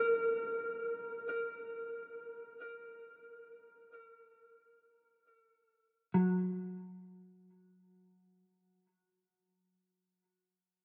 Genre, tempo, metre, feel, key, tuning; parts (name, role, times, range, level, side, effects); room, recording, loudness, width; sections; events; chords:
ambient; free time; A4 = 435 Hz
mellow electric guitar; solo; 6.1-8.4 s; F#3; -38 LUFS; equal; analog chorus, delay
wet huge ambient reverb, RT60 7.6 s; dreamy mix soaked in reverb; -38 LUFS; mono
0.0-7.3 A section
fade-out 3.8-7.3